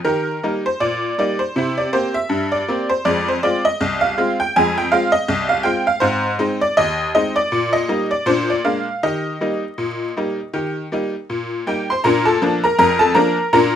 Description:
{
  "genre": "ragtime piano",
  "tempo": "80 BPM",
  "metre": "2/4",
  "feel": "swing 57% on 16ths",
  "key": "Eb major",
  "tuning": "A4 = 440 Hz",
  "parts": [
    { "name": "tack piano", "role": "solo", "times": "0.0-13.8 s", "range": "C2 to C6", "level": "-16 LUFS", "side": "equal", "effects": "none" }
  ],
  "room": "light reverb",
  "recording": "minimal, uncompressed stereo recording, vinyl crackle",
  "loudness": "-16 LUFS",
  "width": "side -9 dB against mid",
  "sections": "0.0-12.0 A section; 12.0-13.8 B section",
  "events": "none",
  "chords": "0.0 Eb; 1.5 C7; 3.0 Fm; 6.0 Ab; 7.5 Eb/Bb; 8.3 Bb7; 9.0 Eb; 12.0 Bb",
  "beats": "| 0.04 0.79 | 1.54 2.29 | 3.04 3.79 | 4.53 5.28 | 6.03 6.78 | 7.52 8.27 | 9.03 9.78 | 10.54 11.29 | 12.05 12.80 | 13.55"
}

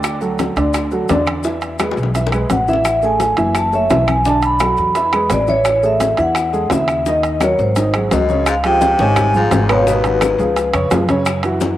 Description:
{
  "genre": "Afro-Cuban jazz",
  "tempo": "171 BPM",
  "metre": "4/4",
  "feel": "straight",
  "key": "A major",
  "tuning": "A4 = 440 Hz",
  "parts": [
    { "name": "warm upright piano", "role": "accompaniment", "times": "0.0-11.7 s", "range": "B2 to E5", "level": "-20 LUFS", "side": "right 2 dB", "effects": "cassette tape" },
    { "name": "upright bass", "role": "bass", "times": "0.0-11.7 s", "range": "F#1 to F#2", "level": "-21 LUFS", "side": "equal", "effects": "none" },
    { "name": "bongos", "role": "percussion", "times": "0.0-11.8 s", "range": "none", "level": "-28 LUFS", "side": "left 7 dB", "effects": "none" },
    { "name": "claves", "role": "percussion", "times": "0.0-11.4 s", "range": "none", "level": "-30 LUFS", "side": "left 9 dB", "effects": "none" },
    { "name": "congas", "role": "percussion", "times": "0.0-11.8 s", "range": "none", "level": "-24 LUFS", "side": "left 4 dB", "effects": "none" },
    { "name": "maracas", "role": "percussion", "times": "0.0-11.8 s", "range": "none", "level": "-35 LUFS", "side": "left 11 dB", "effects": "none" },
    { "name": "timbales", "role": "percussion", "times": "0.0-11.8 s", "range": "none", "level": "-23 LUFS", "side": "right 4 dB", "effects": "none" },
    { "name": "vibraphone with medium mallets", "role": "melody", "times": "2.5-10.9 s", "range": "B4 to B5", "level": "-16 LUFS", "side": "equal", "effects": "cassette tape, analog delay" },
    { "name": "edgy baritone saxophone", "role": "second line", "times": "8.1-10.5 s", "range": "D#2 to B#2", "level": "-23 LUFS", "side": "left 5 dB", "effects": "cassette tape, analog delay" }
  ],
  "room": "moderate spring reverb, RT60 2.4 s",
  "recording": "home recording on cassette",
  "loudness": "-13 LUFS",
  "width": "side -13 dB against mid",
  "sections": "0.0-8.5 A section; 8.5-11.8 B section",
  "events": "drum fill 1.8-2.9",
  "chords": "0.0 Dadd9; 1.4 E; 2.9 A5; 3.6 F#m7; 4.3 Bm7; 5.0 E; 5.7 Amaj7; 7.1 D#m; 7.8 G#7; 8.5 C#maj9#11; 9.9 G#m7; 10.6 C#7; 11.3 F#5",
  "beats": "| 0.04 0.39 0.75 1.10 | 1.45 1.80 2.15 2.50 | 2.85 3.20 3.56 3.91 | 4.26 4.61 4.96 5.31 | 5.66 6.01 6.36 6.71 | 7.06 7.41 7.76 8.11 | 8.46 8.81 9.16 9.51 | 9.86 10.21 10.56 10.91 | 11.26 11.61"
}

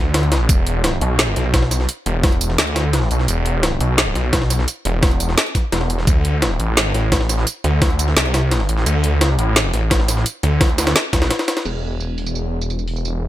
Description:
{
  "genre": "dark technical drum and bass",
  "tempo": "172 BPM",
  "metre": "4/4",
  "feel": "straight",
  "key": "unclear",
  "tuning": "A4 = 440 Hz",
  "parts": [
    { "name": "snarling distorted saw bass", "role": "bass", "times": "0.0-13.3 s", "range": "E1 to D2", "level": "-18 LUFS", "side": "equal", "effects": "distortion, sidechain pumping" },
    { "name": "drum and bass drum kit", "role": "drums", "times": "0.1-13.1 s", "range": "crash cymbal, hi-hat, snare drum, tambourine", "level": "-20 LUFS", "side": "right 1 dB", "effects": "overdrive, low-pass filter on hats, small room reverb, low-pass filter on perc, low-pass filter on snare, low-pass filter on cymbals" },
    { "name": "jungle sampler-style drum kit", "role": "drums", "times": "0.1-11.7 s", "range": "hi-hat, snare drum", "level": "-22 LUFS", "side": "left 1 dB", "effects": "overdrive, high-pass filter on snare, small room reverb, high-pass filter on hats" },
    { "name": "electronic kick drum", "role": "drums", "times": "0.5-11.2 s", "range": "none", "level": "-17 LUFS", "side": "equal", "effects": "overdrive, small room reverb" }
  ],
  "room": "little or no reverb",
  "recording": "none",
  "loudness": "-15 LUFS",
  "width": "side -14 dB against mid",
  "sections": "0.0-11.7 A section; 11.7-13.3 B section",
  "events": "break 11.3-11.7",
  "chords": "none",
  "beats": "0.14 | 0.49 0.84 1.19 1.54 | 1.89 2.24 2.58 2.93 | 3.28 3.63 3.98 4.33 | 4.68 5.03 5.38 5.72 | 6.07 6.42 6.77 7.12 | 7.47 7.82 8.17 8.52 | 8.86 9.21 9.56 9.91 | 10.26 10.61 10.96 11.30 | 11.65 12.00 12.35 12.70 | 13.05"
}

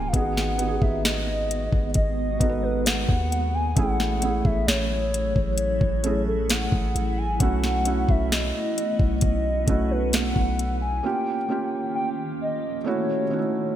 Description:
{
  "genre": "contemporary R&B",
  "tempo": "66 BPM",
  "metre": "4/4",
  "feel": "straight",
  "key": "unclear",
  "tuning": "A4 = 440 Hz",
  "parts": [
    { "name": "hollow clarinet-like synth lead", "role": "melody", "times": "0.0-13.8 s", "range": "A4 to G#5", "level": "-28 LUFS", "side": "left 1 dB", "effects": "chorus, digital delay" },
    { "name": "felt-muted upright piano", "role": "accompaniment", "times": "0.0-13.8 s", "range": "A3 to B4", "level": "-29 LUFS", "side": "right 4 dB", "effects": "none" },
    { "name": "granular cloud pad", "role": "sustained chords", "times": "0.0-13.8 s", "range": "D#3 to G4", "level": "-32 LUFS", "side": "left 1 dB", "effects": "built-in reverb, wide subtle chorus" },
    { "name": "long sustained 808-style bass", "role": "bass", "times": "0.0-11.0 s", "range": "C#1 to D#2", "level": "-27 LUFS", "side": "equal", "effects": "none" },
    { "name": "smooth R&B drum kit", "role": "drums", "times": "0.1-10.8 s", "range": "hi-hat, kick drum, snare drum", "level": "-24 LUFS", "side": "equal", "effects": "gated reverb" }
  ],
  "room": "light reverb",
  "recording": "bright 1980s-style digital production",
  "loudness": "-21 LUFS",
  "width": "side -11 dB against mid",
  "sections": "0.0-13.8 A section",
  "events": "break 11.0-13.8",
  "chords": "0.1 G#m7; 3.8 F#m7/A; 7.4 B7sus4; 11.0 D#7; 12.9 B9sus4",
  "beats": "| 0.13 1.04 1.95 2.86 | 3.77 4.68 5.59 6.50 | 7.41 8.31 9.22 10.13 | 11.04 11.95 12.86"
}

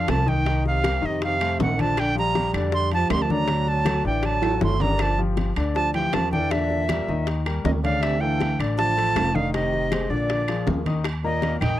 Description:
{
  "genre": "Afro-Cuban jazz",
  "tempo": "159 BPM",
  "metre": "4/4",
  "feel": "straight",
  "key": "D minor",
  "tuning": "A4 = 440 Hz",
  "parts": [
    { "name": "breathy bright silver concert flute", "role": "melody", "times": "0.0-11.8 s", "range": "D5 to C6", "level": "-25 LUFS", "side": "right 2 dB", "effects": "none" },
    { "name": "clear trombone", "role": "second line", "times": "0.0-11.8 s", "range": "Bb2 to A3", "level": "-31 LUFS", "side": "right 5 dB", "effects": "none" },
    { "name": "warm concert grand piano", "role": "accompaniment", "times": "0.0-11.8 s", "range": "D3 to Eb6", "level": "-28 LUFS", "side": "left 5 dB", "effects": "none" },
    { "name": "upright bass", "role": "bass", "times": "0.0-11.8 s", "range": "F1 to F2", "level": "-26 LUFS", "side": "equal", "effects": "none" },
    { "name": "bongos", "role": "percussion", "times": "0.1-11.6 s", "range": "none", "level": "-30 LUFS", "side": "left 6 dB", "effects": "none" },
    { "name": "claves", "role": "percussion", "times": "0.1-11.8 s", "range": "none", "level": "-35 LUFS", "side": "left 12 dB", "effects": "none" },
    { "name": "congas", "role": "percussion", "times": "0.1-11.8 s", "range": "none", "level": "-31 LUFS", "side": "left 1 dB", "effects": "none" },
    { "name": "timbales", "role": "percussion", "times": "0.1-11.8 s", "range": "none", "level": "-32 LUFS", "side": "right 5 dB", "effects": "none" }
  ],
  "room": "light reverb",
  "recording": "dry, close 1970s-style studio recording",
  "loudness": "-20 LUFS",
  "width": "side -13 dB against mid",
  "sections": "0.0-11.1 A section",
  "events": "drum fill 4.4-5.0",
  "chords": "0.5 Cm7; 1.2 F7; 2.0 Bb6; 3.5 D; 5.0 G5; 6.5 Em7b5; 7.3 Eb; 8.0 Dmadd9; 9.5 Fm7; 10.3 Bb7; 11.1 Eb",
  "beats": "0.09 | 0.46 0.84 1.22 1.60 | 1.98 2.35 2.73 3.11 | 3.49 3.87 4.25 4.62 | 5.00 5.38 5.76 6.14 | 6.51 6.89 7.27 7.65 | 8.03 8.41 8.78 9.16 | 9.54 9.92 10.30 10.67 | 11.05 11.43"
}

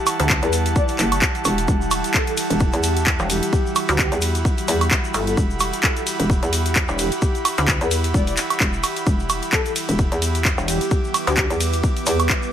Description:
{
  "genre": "bass house",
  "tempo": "130 BPM",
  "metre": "4/4",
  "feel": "swing 56% on 16ths",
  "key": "E minor",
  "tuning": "A4 = 438 Hz",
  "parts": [
    { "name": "breathy flute-like synth lead", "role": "melody", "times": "0.0-11.5 s", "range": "G4 to D5", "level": "-29 LUFS", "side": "left 2 dB", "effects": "analog chorus, cassette tape, dub echo" },
    { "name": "deep dark ambient pad", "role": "sustained chords", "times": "0.0-12.5 s", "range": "E4 to B5", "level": "-31 LUFS", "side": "right 2 dB", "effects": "chorus, built-in reverb, sidechain pumping" },
    { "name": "airy breathy pad", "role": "texture", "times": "0.0-12.5 s", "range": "E4 to D6", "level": "-27 LUFS", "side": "right 2 dB", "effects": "chorus, sidechain pumping" },
    { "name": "house drum kit", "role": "drums", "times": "0.1-12.4 s", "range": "handclaps, hi-hat, ride cymbal, woodblock", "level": "-22 LUFS", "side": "right 1 dB", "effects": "none" },
    { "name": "egg shaker", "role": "percussion", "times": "0.1-12.5 s", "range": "none", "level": "-31 LUFS", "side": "left 4 dB", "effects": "none" },
    { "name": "pulsing pluck wobble bass", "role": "bass", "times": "0.2-0.4, 3.2-7.8, 10.6-11.5 s", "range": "E1 to D2", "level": "-21 LUFS", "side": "equal", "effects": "chorus, overdrive, sidechain pumping" },
    { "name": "electronic kick drum", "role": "drums", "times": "0.3-12.4 s", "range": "none", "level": "-21 LUFS", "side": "equal", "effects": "none" },
    { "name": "hollow knocking FM bass", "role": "bass", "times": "0.4-12.3 s", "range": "E1 to E2", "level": "-22 LUFS", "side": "equal", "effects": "overdrive, sidechain pumping" }
  ],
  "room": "digital ambience",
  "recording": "none",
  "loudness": "-17 LUFS",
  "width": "side -10 dB against mid",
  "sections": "0.0-12.5 A section",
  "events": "none",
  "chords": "0.0 Emadd9",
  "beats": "0.30 0.76 1.22 | 1.68 2.14 2.60 3.07 | 3.53 3.99 4.45 4.91 | 5.37 5.83 6.30 6.76 | 7.22 7.68 8.14 8.61 | 9.07 9.53 9.99 10.45 | 10.91 11.37 11.84 12.30"
}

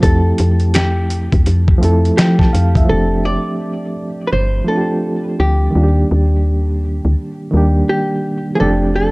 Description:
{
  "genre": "lo-fi hip hop",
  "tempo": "84 BPM",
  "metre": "4/4",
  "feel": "swing 63% on 16ths",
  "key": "F mixolydian",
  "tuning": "A4 = 439 Hz",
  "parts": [
    { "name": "archtop guitar, miked and amplified", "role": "melody", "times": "0.0-9.1 s", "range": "G4 to D5", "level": "-21 LUFS", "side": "equal", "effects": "low-pass filter, dub echo" },
    { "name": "bright reed electric piano", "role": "accompaniment", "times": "0.0-9.1 s", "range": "Eb3 to A5", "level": "-18 LUFS", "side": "right 1 dB", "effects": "fast tremolo, cassette tape, low-pass filter" },
    { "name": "woody FM bass", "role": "bass", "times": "0.0-9.1 s", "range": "F1 to F3", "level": "-14 LUFS", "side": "equal", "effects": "none" },
    { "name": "dusty soul sampler-style drum kit", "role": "drums", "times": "0.0-2.9 s", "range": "finger snaps, hi-hat, kick drum, snare drum", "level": "-14 LUFS", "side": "equal", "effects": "none" }
  ],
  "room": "light reverb, digital ambience",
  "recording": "echo-heavy mix, cassette tape",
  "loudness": "-13 LUFS",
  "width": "side -25 dB against mid",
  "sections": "0.0-2.9 A section; 2.9-9.1 B section",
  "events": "none",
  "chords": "0.0 Fmaj9; 2.9 F69; 5.7 Ebmaj7; 8.6 F69",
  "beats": "| 0.03 0.74 1.46 2.17 | 2.88 3.60 4.31 5.03 | 5.74 6.46 7.17 7.88 | 8.60"
}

